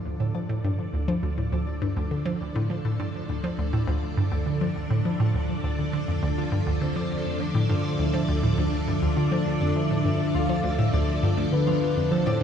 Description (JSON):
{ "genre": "ambient, sequencer-driven space music", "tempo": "102 BPM", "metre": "4/4", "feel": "straight", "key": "D minor", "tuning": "A4 = 441 Hz", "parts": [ { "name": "string machine, full ensemble", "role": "sustained chords", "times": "0.0-12.4 s", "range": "D3 to D5", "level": "-28 LUFS", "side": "right 1 dB", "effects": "ensemble chorus" }, { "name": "concert harp", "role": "arpeggios", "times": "0.0-12.4 s", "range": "D4 to D5", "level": "-35 LUFS", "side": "left 7 dB", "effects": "auto-pan, analog delay" }, { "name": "hollow square pluck", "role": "riff", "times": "0.2-12.4 s", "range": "D2 to F3", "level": "-25 LUFS", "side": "equal", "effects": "chorus, analog delay" }, { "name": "soft octave-layered synth lead", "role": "melody", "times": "6.8-12.4 s", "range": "B4 to F5", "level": "-32 LUFS", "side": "left 3 dB", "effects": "chorus, tremolo, analog delay" } ], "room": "wet cathedral reverb, RT60 5.1 s", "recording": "dreamy mix soaked in reverb, cassette tape, faint mains hum", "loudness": "-23 LUFS", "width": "side -8 dB against mid", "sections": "0.0-12.4 A section", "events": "fade-in on harp 0.0-12.4; fade-in on string machine 0.0-12.4", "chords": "0.0 Dmadd9", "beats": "0.35 0.93 | 1.52 2.11 2.70 3.29 | 3.88 4.46 5.05 5.64 | 6.23 6.82 7.41 7.99 | 8.58 9.17 9.76 10.35 | 10.93 11.52 12.11" }